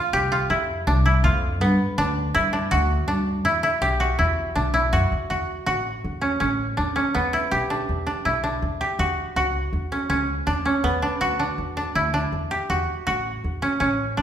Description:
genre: contemporary instrumental, chamber music in an uneven meter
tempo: 162 BPM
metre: 5/4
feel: straight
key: unclear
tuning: A4 = 440 Hz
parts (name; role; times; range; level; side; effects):
- koto; arpeggios; 0.0-14.2 s; B3 to G4; -22 LUFS; right 1 dB; none
- upright bass; bass; 0.1-14.2 s; A1 to G2; -25 LUFS; equal; none
room: wet recital hall reverb, RT60 1.4 s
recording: recorded in a church or concert hall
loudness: -20 LUFS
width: side -9 dB against mid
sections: 0.0-5.3 A section; 5.3-14.2 B section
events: none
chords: 0.0 F5; 1.6 Gmaj7; 3.5 Em7; 5.3 Dmaj7; 7.1 Em7; 9.0 F#5; 10.8 Gmaj7 (rootless); 12.7 Dmaj7

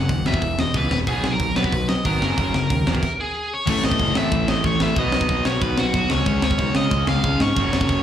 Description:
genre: punk rock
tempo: 185 BPM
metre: 4/4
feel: straight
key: unclear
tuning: A4 = 439 Hz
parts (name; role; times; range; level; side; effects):
- biting overdriven guitar; melody; 0.0-8.0 s; F#4 to F#5; -24 LUFS; left 1 dB; slapback echo
- overdriven semi-hollow guitar; riff; 0.0-8.0 s; E2 to C#4; -28 LUFS; right 10 dB; slapback echo
- sludgy distorted guitar; riff; 0.0-8.0 s; E2 to C#4; -26 LUFS; left 8 dB; overdrive, slapback echo
- fuzz picked electric bass; bass; 0.0-8.0 s; E1 to C#3; -24 LUFS; right 1 dB; overdrive
- tight metal drum kit; drums; 0.1-8.0 s; crash cymbal, hi-hat, kick drum, snare drum; -24 LUFS; equal; none
- biting overdriven guitar; riff; 3.7-8.0 s; F#2 to C#4; -29 LUFS; right 1 dB; none
room: studio reverb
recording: live gig heard through the venue's PA, club reverb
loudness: -18 LUFS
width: side -10 dB against mid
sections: 0.0-3.7 A section; 3.7-8.0 B section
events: stop 3.0-3.7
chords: 0.3 E5; 1.1 B5; 2.2 F#; 2.9 E5; 3.4 N.C.; 3.7 A5; 5.0 B; 6.1 C#

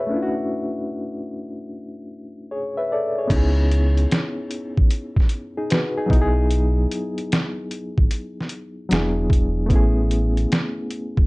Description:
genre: lo-fi hip hop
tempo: 75 BPM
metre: 4/4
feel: swing 65% on 16ths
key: unclear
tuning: A4 = 441 Hz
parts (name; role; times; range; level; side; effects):
- bright reed electric piano; accompaniment; 0.0-11.3 s; F#3 to E5; -24 LUFS; left 1 dB; fast tremolo, low-pass filter
- sub bass with octave; bass; 3.3-11.3 s; E1 to C#2; -20 LUFS; equal; none
- lo-fi sampler-style drum kit; drums; 3.3-11.3 s; crash cymbal, hi-hat, kick drum, snare drum; -20 LUFS; equal; vintage 12-bit sampler grit
room: moderate studio reverb, RT60 0.6 s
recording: dark, warm production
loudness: -19 LUFS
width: side -24 dB against mid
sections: 0.0-3.3 A section; 3.3-11.3 B section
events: none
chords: 0.1 Dmaj7; 3.3 C#m7; 6.1 Emaj7/B; 8.9 E7; 9.7 Amaj7

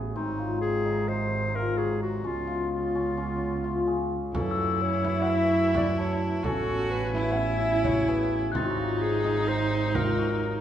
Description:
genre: contemporary instrumental, chamber music in an uneven meter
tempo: 258 BPM (eighths)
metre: 9/8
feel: straight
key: unclear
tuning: A4 = 442 Hz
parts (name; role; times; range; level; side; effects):
- dark woodwind section; sustained chords; 0.0-10.6 s; B#2 to G#5; -36 LUFS; equal; none
- cimbalom; arpeggios; 0.0-10.6 s; B#3 to A4; -29 LUFS; left 3 dB; none
- warm double bass; bass; 0.0-10.6 s; G#1 to F#2; -30 LUFS; right 3 dB; none
- clear clarinet; melody; 0.1-10.6 s; D#4 to F#5; -31 LUFS; left 1 dB; none
- rich viola; second line; 4.3-10.6 s; D#4 to F#4; -30 LUFS; right 3 dB; none
- frame drum; percussion; 4.3-10.3 s; none; -35 LUFS; right 2 dB; none
- glockenspiel with rubber mallets; texture; 4.5-8.8 s; E6 to A6; -35 LUFS; left 7 dB; none
room: wet recital hall reverb, RT60 1.4 s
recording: recorded in a church or concert hall, nothing above 10.8 kHz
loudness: -24 LUFS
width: side -10 dB against mid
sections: 0.0-10.6 A section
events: none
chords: 0.2 G#7; 2.2 C#7; 4.3 F#m7; 6.4 Amaj9; 8.5 G#7

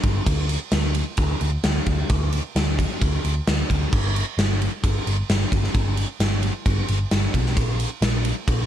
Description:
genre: rock, shoegaze and dream pop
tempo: 132 BPM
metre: 4/4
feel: straight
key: unclear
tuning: A4 = 440 Hz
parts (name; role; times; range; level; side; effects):
- hollow-body short-scale picked electric bass; bass; 0.0-8.6 s; G1 to D2; -22 LUFS; equal; none
- gated 80s drum kit; drums; 0.0-8.6 s; crash cymbal, kick drum, ride cymbal, snare drum; -22 LUFS; equal; none
room: little or no reverb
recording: none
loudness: -20 LUFS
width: side -10 dB against mid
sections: 0.0-8.7 A section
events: none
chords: none

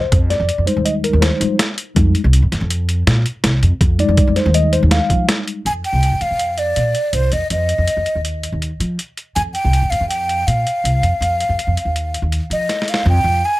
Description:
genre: progressive instrumental, band music in an uneven meter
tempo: 162 BPM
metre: 5/4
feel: straight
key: F dorian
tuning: A4 = 440 Hz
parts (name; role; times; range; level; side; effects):
- mellow tine electric piano; accompaniment; 0.0-5.6 s; G3 to F5; -18 LUFS; left 1 dB; medium stereo tremolo, plate reverb
- upright bass; bass; 0.0-13.4 s; C2 to F3; -17 LUFS; equal; none
- boom bap sampler-style drum kit; drums; 0.1-13.0 s; hi-hat, kick drum, snare drum; -19 LUFS; equal; none
- breathy mellow silver concert flute; melody; 5.7-13.6 s; C5 to Ab5; -19 LUFS; equal; digital delay
room: light reverb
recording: none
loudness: -14 LUFS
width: side -18 dB against mid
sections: 0.0-5.7 A section; 5.7-13.1 B section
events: tine electric piano solo 0.0-5.7; drum fill 12.7-13.1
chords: 0.0 Fm7; 5.7 F5

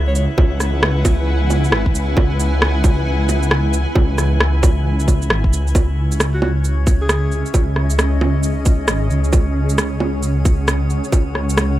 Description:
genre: future garage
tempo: 134 BPM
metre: 4/4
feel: swing 63% on 16ths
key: C# minor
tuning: A4 = 440 Hz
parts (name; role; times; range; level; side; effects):
- granular cloud pad; sustained chords; 0.0-11.8 s; C#4 to G#5; -25 LUFS; right 1 dB; built-in reverb, sidechain pumping
- dark detuned saw bass; bass; 0.0-11.8 s; G#1 to C#2; -17 LUFS; equal; sidechain pumping
- drifting glass-harmonics texture; texture; 0.0-11.8 s; C#4 to E5; -30 LUFS; left 2 dB; chorus, built-in reverb
- breathy alto saxophone; melody; 0.1-0.2, 6.3-7.5 s; F#4 to C#5; -30 LUFS; equal; dub echo
- electronic shaker, bongos and rim click; drums; 0.2-11.7 s; none; -20 LUFS; right 1 dB; none
- electronic kick drum; drums; 0.4-11.2 s; none; -14 LUFS; equal; none
room: little or no reverb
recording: none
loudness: -14 LUFS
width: side -14 dB against mid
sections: 0.0-5.8 A section; 5.8-11.8 B section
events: none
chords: 0.0 E; 5.8 C#m7

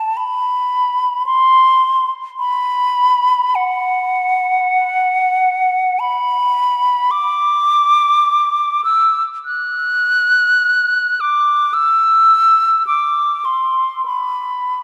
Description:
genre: classical, free, expressive piece for unaccompanied flute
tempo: 44-55 BPM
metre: 4/4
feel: rubato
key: unclear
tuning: A4 = 439 Hz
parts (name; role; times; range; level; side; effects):
- hollow concert flute; solo; 0.0-14.8 s; F#5 to F#6; -15 LUFS; equal; none
room: wet church reverb, RT60 3.5 s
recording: none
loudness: -15 LUFS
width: mono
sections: 0.0-14.8 A section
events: none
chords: none

